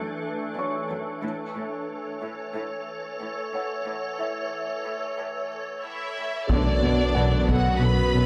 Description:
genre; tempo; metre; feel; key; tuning
cinematic, hybrid orchestral and electronic film score; 91 BPM; 4/4; straight; unclear; A4 = 440 Hz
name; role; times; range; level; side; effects
swarming drone; sustained chords; 0.0-8.3 s; E3 to C#5; -33 LUFS; equal; built-in reverb
felt-muted upright piano; texture; 0.0-8.3 s; E4 to C#6; -39 LUFS; equal; tape echo
warm symphonic cello section; bass; 0.6-8.2 s; F#2 to B2; -34 LUFS; equal; none
taiko ensemble; drums; 1.2-2.5, 6.5-8.1 s; none; -30 LUFS; equal; none
warm symphonic violin section; melody; 5.8-8.3 s; D5 to B5; -31 LUFS; equal; none
rich symphonic violin section; second line; 5.8-8.3 s; D4 to B4; -34 LUFS; equal; none
warm symphonic viola section; accompaniment; 6.5-8.3 s; D3 to B3; -34 LUFS; equal; none
dark French horn section; sustained chords; 6.5-8.3 s; B3 to F#4; -34 LUFS; equal; none
mellow trombone section; sustained chords; 6.5-8.3 s; F#2 to F#3; -34 LUFS; equal; none
round analog bass; riff; 6.5-8.3 s; B2 to B3; -29 LUFS; equal; none
warm sub bass; bass; 6.5-8.3 s; B1; -29 LUFS; equal; none
warm symphonic double bass section; bass; 6.5-8.2 s; B1; -32 LUFS; equal; none
room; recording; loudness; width
moderate scoring stage reverb, RT60 1.6 s; close, detailed microphones, high-pass filter; -27 LUFS; mono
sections
0.0-6.5 A section; 6.5-8.3 B section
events
build-up 0.0-6.5; filter sweep 0.0-6.5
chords
0.0 Dadd9; 1.2 A; 6.5 Bm

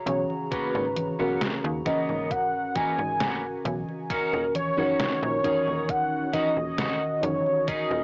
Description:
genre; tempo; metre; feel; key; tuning
vaporwave; 67 BPM; 4/4; straight; G# minor; A4 = 440 Hz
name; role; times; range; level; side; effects
warm velvety synth lead; melody; 0.0-8.0 s; A#4 to G#5; -26 LUFS; equal; chorus, vintage 12-bit sampler grit, cassette tape, tape echo, plate reverb
warbly tape-like pad; sustained chords; 0.0-8.0 s; C#3 to A#5; -36 LUFS; equal; chorus, built-in reverb, vintage 12-bit sampler grit, cassette tape
mellow FM electric piano; accompaniment; 0.1-8.0 s; C#4 to A#4; -30 LUFS; equal; wide subtle chorus, cassette tape, tape echo
clean electric guitar; riff; 0.1-8.0 s; A#3 to G#4; -34 LUFS; equal; lush chorus, cassette tape, tape echo
slap-like FM bass; bass; 0.1-8.0 s; D#1 to D#2; -33 LUFS; equal; none
detuned 8-bit digital drum machine; drums; 0.1-7.9 s; congas, hi-hat, snare drum; -33 LUFS; equal; vintage 12-bit sampler grit, cassette tape
electronic kick drum; drums; 0.5-7.9 s; none; -35 LUFS; equal; vintage 12-bit sampler grit, cassette tape
room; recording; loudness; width
moderate studio reverb, RT60 0.5 s; home recording on cassette, small speaker sound; -24 LUFS; side -33 dB against mid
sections
0.0-8.0 A section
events
none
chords
0.0 G#m11; 4.1 D#m7

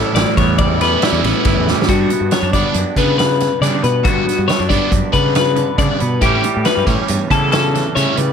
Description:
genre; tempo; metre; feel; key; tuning
math rock and midwest emo; 138 BPM; 5/4; straight; G lydian; A4 = 438 Hz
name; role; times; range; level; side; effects
twangy electric guitar; accompaniment; 0.0-8.3 s; E2 to G4; -22 LUFS; right 10 dB; none
twelve-string electric guitar; arpeggios; 0.0-8.3 s; F#4 to D5; -18 LUFS; left 9 dB; slapback echo
cranked stack guitar; riff; 0.0-8.2 s; A2 to E4; -20 LUFS; right 2 dB; overdrive, phaser
fuzz fingered electric bass; bass; 0.1-8.3 s; G1 to C#3; -19 LUFS; equal; overdrive
loose indie drum kit; drums; 0.2-8.3 s; hi-hat, kick drum, ride cymbal, snare drum; -19 LUFS; right 1 dB; none
room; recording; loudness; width
little or no reverb; none; -13 LUFS; side -7 dB against mid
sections
0.0-1.9 A section; 1.9-8.3 B section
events
drum fill 1.7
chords
0.0 A9sus4; 1.9 Gmaj7; 6.2 A7

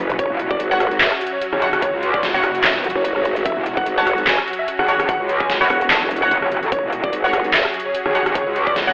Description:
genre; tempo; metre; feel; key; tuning
heavy wobble dubstep; 147 BPM; 4/4; swing 55% on 16ths, half-time; unclear; A4 = 441 Hz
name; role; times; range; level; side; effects
supersaw pad; sustained chords; 0.0-8.9 s; F#3 to B4; -30 LUFS; equal; phaser, sidechain pumping
growl bass; bass; 0.0-7.6 s; E1 to G#1; -24 LUFS; equal; chorus, overdrive
dubstep drum kit; drums; 0.1-8.9 s; handclaps, hi-hat, rim click, snare drum, toms; -22 LUFS; equal; overdrive
clear grand piano; melody; 0.2-8.9 s; F#4 to B5; -25 LUFS; equal; none
electronic kick drum; drums; 0.2-8.7 s; none; -28 LUFS; equal; overdrive
metallic wobble bass; bass; 0.3-8.9 s; E1 to F#2; -23 LUFS; equal; distortion, chorus, overdrive
orchestra-hit-like synth stab; stabs; 0.7-8.9 s; F#4 to F#5; -24 LUFS; equal; built-in reverb, dub echo
room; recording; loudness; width
light reverb; telephone sound; -19 LUFS; mono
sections
0.0-8.9 A section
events
break 0.0; drum fill 0.0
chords
0.0 F#5

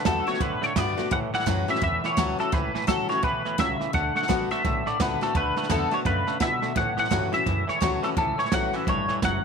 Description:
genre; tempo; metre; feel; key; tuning
rockabilly; 170 BPM; 4/4; swing 62% on 8ths; A mixolydian; A4 = 442 Hz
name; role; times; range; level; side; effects
twangy electric guitar; melody; 0.0-9.4 s; A4 to F#5; -26 LUFS; left 2 dB; analog chorus, tape echo
picked steel-string acoustic guitar; accompaniment; 0.0-9.4 s; E2 to F#4; -30 LUFS; left 12 dB; none
twangy electric guitar; riff; 0.0-9.4 s; A2 to B3; -31 LUFS; right 14 dB; none
upright bass; bass; 0.1-9.4 s; F#1 to A2; -32 LUFS; equal; none
jazz brush drum kit; drums; 0.1-9.3 s; hi-hat, kick drum, snare drum; -29 LUFS; right 4 dB; none
room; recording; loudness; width
studio ambience; 1960s-style stereo with parts hard left and right; -22 LUFS; side -6 dB against mid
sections
0.0-9.4 A section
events
none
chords
0.0 D6; 1.1 A6

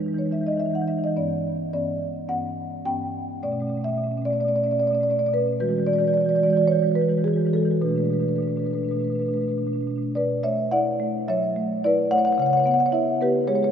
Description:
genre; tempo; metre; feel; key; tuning
classical, contemporary piece for solo marimba; 108 BPM; 4/4; rubato; B minor; A4 = 436 Hz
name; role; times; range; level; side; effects
marimba with soft mallets; solo; 0.0-13.7 s; G2 to G5; -21 LUFS; equal; none
room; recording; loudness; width
wet cathedral reverb, RT60 5.1 s; minimal, uncompressed stereo recording; -21 LUFS; side -8 dB against mid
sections
0.0-10.1 A section; 10.1-13.7 B section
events
none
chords
0.0 Emaj7; 1.2 Gmaj7#11; 3.4 Bm9; 5.6 E9; 7.8 Bm7; 10.1 Bm11; 12.4 C#m7

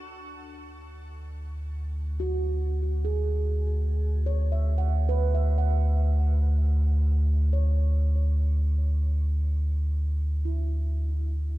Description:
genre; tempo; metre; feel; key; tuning
ambient; 73 BPM; 4/4; straight; unclear; A4 = 443 Hz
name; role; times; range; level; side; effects
handpan; arpeggios; 0.0-11.6 s; E4 to F#5; -35 LUFS; right 4 dB; shimmer reverb, ping-pong delay
round analog bass; bass; 0.0-11.6 s; D2; -24 LUFS; equal; none
room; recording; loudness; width
little or no reverb; dark, warm production; -23 LUFS; side -18 dB against mid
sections
0.0-11.6 A section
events
fade-out on handpan 0.0-11.6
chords
0.0 Amaj7/D (rootless)

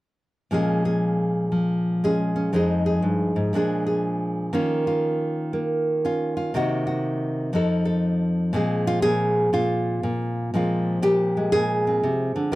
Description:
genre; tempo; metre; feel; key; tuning
solo jazz; 120 BPM; 4/4; swing 66% on 8ths; Bb minor; A4 = 441 Hz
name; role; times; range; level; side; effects
nylon-string guitar; solo; 0.5-12.6 s; F2 to A4; -21 LUFS; equal; none
room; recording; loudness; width
moderate booth ambience, RT60 0.3 s; dry, close 1970s-style studio recording; -21 LUFS; side -18 dB against mid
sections
0.5-8.5 A section; 8.5-12.6 B section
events
none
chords
0.5 Bbm7; 2.5 Fm7; 3.5 Bb7; 4.5 Ebsus2; 6.5 Cm7b5; 7.5 F7; 8.5 Bbsus2; 10.5 Bb7sus2

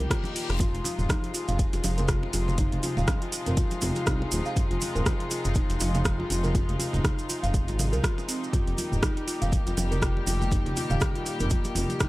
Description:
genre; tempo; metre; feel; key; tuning
afro house; 121 BPM; 4/4; swing 57% on 16ths; F minor; A4 = 440 Hz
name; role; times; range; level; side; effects
warm studio string section; sustained chords; 0.0-12.1 s; Bb2 to G4; -34 LUFS; left 2 dB; sidechain pumping
buzzing marimba with soft mallets; arpeggios; 0.0-12.1 s; C4 to F5; -34 LUFS; equal; sidechain pumping, tape echo
smooth synth bass; bass; 0.0-12.1 s; Eb1 to C2; -28 LUFS; equal; sidechain pumping
deep house drum kit; drums; 0.0-12.1 s; hi-hat, rim click, toms; -32 LUFS; equal; none
congas; percussion; 0.0-12.0 s; none; -33 LUFS; right 1 dB; none
reverse cymbal; sound effects; 0.0-0.6 s; none; -38 LUFS; left 7 dB; none
electronic kick drum; drums; 0.1-12.1 s; none; -27 LUFS; equal; none
cabasa; percussion; 0.6-12.1 s; none; -37 LUFS; right 4 dB; none
room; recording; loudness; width
small room ambience; dry, gritty hardware recording, transformer saturation; -24 LUFS; side -19 dB against mid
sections
0.0-12.1 A section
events
reverse cymbal 0.0-0.6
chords
0.0 Eb; 0.6 Fm7; 8.5 Eb

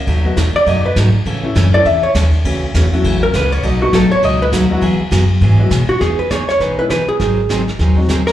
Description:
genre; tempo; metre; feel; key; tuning
country, western swing; 202 BPM; 4/4; swing 61% on 8ths; E major; A4 = 440 Hz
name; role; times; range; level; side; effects
picked steel-string acoustic guitar; accompaniment; 0.1-8.2 s; B2 to A4; -19 LUFS; right 2 dB; slapback echo
upright bass; bass; 0.1-8.3 s; G#1 to B2; -15 LUFS; equal; none
vintage brush drum kit; drums; 0.1-8.3 s; brushed snare drum, hi-hat, kick drum, ride cymbal, snare drum; -23 LUFS; left 1 dB; none
warm upright piano; accompaniment; 0.2-8.1 s; E3 to A4; -21 LUFS; left 4 dB; slapback echo
vintage hollow-body jazz guitar; melody; 0.6-8.3 s; F#4 to E5; -15 LUFS; equal; slapback echo
room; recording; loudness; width
light reverb, small room ambience; live gig heard through the venue's PA, club reverb; -12 LUFS; side -12 dB against mid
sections
0.0-6.0 A section; 6.0-8.3 B section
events
hollow-body jazz guitar solo 0.0-6.0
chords
0.1 B7; 1.3 A; 2.4 F#m7; 3.6 B7; 4.8 Eadd9; 6.0 Emaj7; 7.2 G#7

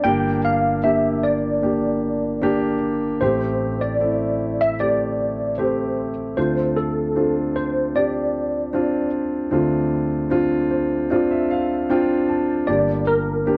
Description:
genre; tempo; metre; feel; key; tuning
pop; 76 BPM; 4/4; straight; D minor; A4 = 440 Hz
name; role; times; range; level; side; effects
tine electric piano; melody; 0.0-13.6 s; A4 to G5; -24 LUFS; equal; ensemble chorus, slapback echo
warm concert grand piano; accompaniment; 0.0-13.6 s; G1 to A5; -22 LUFS; equal; none
room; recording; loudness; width
little or no reverb; dry, close 1970s-style studio recording; -21 LUFS; mono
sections
0.0-6.4 A section; 6.4-13.6 B section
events
grand piano fill 10.3-12.7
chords
0.0 Gm; 3.2 Am7; 6.4 Dm7; 12.7 Gm

